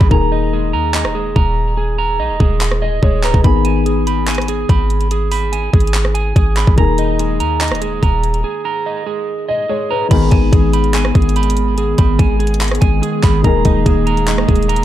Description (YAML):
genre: hip hop, trap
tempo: 144 BPM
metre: 4/4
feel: half-time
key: G# minor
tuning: A4 = 440 Hz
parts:
  - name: dark concert grand piano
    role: accompaniment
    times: 0.0-14.8 s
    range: D#3 to D#5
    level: -21 LUFS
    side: left 8 dB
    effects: low-pass filter
  - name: electric guitar at the edge of break-up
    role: arpeggios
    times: 0.0-14.8 s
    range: G#4 to B5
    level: -20 LUFS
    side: right 6 dB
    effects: low-pass filter, ping-pong delay
  - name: warm 808-style bass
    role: bass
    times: 0.0-14.8 s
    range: C#1 to D#2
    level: -16 LUFS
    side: equal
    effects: none
  - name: garage drum kit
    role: drums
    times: 0.0-14.8 s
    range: crash cymbal, handclaps, hi-hat, kick drum, rim click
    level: -15 LUFS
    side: equal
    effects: overdrive
  - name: hollow soft pad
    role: sustained chords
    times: 10.4-14.8 s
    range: D#3 to G#4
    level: -20 LUFS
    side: right 1 dB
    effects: chorus
  - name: clear brass ensemble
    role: stabs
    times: 10.1-10.4, 13.4-13.7 s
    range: G#2 to D#3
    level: -24 LUFS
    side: left 6 dB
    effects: none
room: digital ambience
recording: dark, warm production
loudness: -12 LUFS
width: side -12 dB against mid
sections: 0.0-10.1 A section; 10.1-14.8 B section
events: break 0.0-3.4, 8.4-10.1; grand piano fill 2.6-3.4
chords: 0.1 D#sus4; 3.4 G#m; 6.8 D#sus4; 10.1 G#m; 13.4 D#sus4